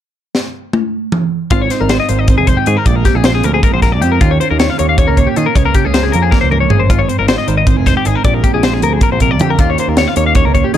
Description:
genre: math rock and midwest emo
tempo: 312 BPM (eighths)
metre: 7/8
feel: straight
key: Ab major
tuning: A4 = 438 Hz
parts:
  - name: crisp fusion drum kit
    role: drums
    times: 0.3-10.8 s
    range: hi-hat, kick drum, snare drum, toms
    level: -14 LUFS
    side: equal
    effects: none
  - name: mellow electric guitar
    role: accompaniment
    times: 1.5-10.8 s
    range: F2 to G4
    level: -18 LUFS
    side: right 9 dB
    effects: none
  - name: twelve-string electric guitar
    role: arpeggios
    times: 1.5-10.8 s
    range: F4 to F5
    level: -16 LUFS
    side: left 8 dB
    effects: analog delay, plate reverb
  - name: picked electric bass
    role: bass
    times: 1.5-10.8 s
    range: F1 to Eb3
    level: -16 LUFS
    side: equal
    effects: none
room: light reverb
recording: dark, warm production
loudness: -10 LUFS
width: side -10 dB against mid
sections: 0.2-1.5 A section; 1.5-10.8 B section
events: drum fill 0.4-1.5, 6.3-6.9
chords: 0.2 N.C.; 1.5 Ab6; 2.9 Bb13; 4.2 Eb7sus2; 5.6 Db6; 6.9 Ab6; 8.3 Bb13; 9.6 Eb7sus2

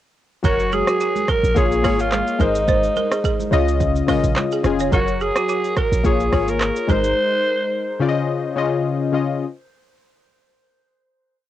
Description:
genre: afrobeats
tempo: 107 BPM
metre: 4/4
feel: swing 55% on 16ths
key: Db major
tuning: A4 = 440 Hz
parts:
  - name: growling alto saxophone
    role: melody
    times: 0.4-8.0 s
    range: Eb4 to C5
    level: -22 LUFS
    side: right 1 dB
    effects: cassette tape, analog delay
  - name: warm analog keys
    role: accompaniment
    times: 0.4-9.4 s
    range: Db3 to Eb5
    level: -21 LUFS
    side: left 6 dB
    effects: chorus
  - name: balafon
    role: riff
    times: 0.4-7.0 s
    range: Gb4 to Db5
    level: -26 LUFS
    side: right 8 dB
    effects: none
  - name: warm 808-style bass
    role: bass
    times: 0.4-7.1 s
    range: F1 to Db2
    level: -22 LUFS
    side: right 1 dB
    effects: none
  - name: afro-pop drum kit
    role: drums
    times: 0.4-7.2 s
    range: handclaps, hi-hat, kick drum, rim click, shaker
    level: -23 LUFS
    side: right 1 dB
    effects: vintage 12-bit sampler grit, cassette tape
  - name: congas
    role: percussion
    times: 0.4-4.8 s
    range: none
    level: -32 LUFS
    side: right 9 dB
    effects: none
room: moderate booth ambience, RT60 0.2 s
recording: home recording on cassette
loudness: -17 LUFS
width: side -12 dB against mid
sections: 0.4-9.4 chorus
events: none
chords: 0.4 Gb; 1.6 Bbm7; 2.4 Abadd9; 3.5 Dbadd9; 4.9 Gb; 6.0 Bbm7; 6.9 Abadd9; 8.0 Dbadd9

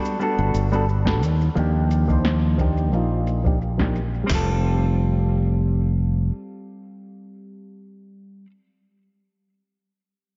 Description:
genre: sunset chillout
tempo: 88 BPM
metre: 4/4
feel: swing 54% on 16ths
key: F major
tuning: A4 = 442 Hz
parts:
  - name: hollow-body jazz guitar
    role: accompaniment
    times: 0.0-8.5 s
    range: F3 to C5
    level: -28 LUFS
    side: equal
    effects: low-pass filter, tape echo
  - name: electronic shaker and snare drum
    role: drums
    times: 0.1-4.3 s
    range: none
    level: -33 LUFS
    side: equal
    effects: overdrive, low-pass filter on perc, studio reverb, low-pass filter on snare
  - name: modern bright fingered electric bass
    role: bass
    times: 0.4-6.3 s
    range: F1 to Eb2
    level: -23 LUFS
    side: equal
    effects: none
  - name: soft vintage rhythm box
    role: drums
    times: 1.1-4.5 s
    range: crash cymbal, kick drum, snare drum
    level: -27 LUFS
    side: equal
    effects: studio reverb
room: moderate lush hall reverb, RT60 2.9 s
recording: dreamy mix soaked in reverb, nothing above 7.6 kHz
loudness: -21 LUFS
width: mono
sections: 0.0-4.3 A section; 4.3-7.0 B section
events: filter sweep on drum 0.0-4.3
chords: 0.0 Gmaj9; 1.2 Ebmaj9; 4.3 Fadd9

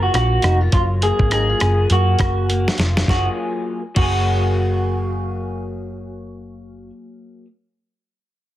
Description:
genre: indie pop, bedroom pop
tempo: 102 BPM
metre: 4/4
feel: swing 60% on 16ths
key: F# major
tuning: A4 = 440 Hz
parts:
  - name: electric guitar through a small old amp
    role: melody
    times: 0.0-6.9 s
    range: E#4 to G#4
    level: -22 LUFS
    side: right 1 dB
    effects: wide subtle chorus, slapback echo
  - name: electric guitar through a small old amp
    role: accompaniment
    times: 0.0-7.5 s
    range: F#3 to G#4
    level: -27 LUFS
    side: left 3 dB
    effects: lush chorus, vibrato effect
  - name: hollow-body short-scale picked electric bass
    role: bass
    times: 0.0-6.9 s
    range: E#1 to F#2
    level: -19 LUFS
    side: equal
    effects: none
  - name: dusty soul sampler-style drum kit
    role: drums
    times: 0.1-4.2 s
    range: crash cymbal, hi-hat, kick drum, rim click, snare drum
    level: -21 LUFS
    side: equal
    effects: none
room: light reverb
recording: heavily compressed radio sound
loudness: -16 LUFS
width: side -14 dB against mid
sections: 0.0-3.1 A section; 3.1-5.4 B section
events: drum fill 2.5-3.1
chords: 0.0 F#maj9

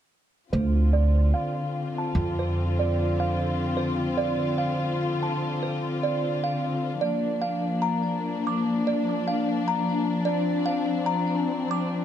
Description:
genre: trip hop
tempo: 74 BPM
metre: 4/4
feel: swing 59% on 16ths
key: D minor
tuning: A4 = 439 Hz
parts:
  - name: dark studio string section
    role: sustained chords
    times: 0.5-12.0 s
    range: D3 to F4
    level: -26 LUFS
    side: left 2 dB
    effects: none
  - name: music box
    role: arpeggios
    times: 0.5-11.9 s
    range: C5 to D6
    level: -29 LUFS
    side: right 2 dB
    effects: low-pass filter, digital delay
  - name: upright bass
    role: bass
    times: 0.5-12.0 s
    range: Bb1 to F2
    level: -24 LUFS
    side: right 1 dB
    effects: none
room: light reverb, studio reverb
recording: dark, warm production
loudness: -23 LUFS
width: side -10 dB against mid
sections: 0.5-12.0 A section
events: filter sweep on music box 0.5-12.0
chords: 0.5 Dm7; 7.0 Bb

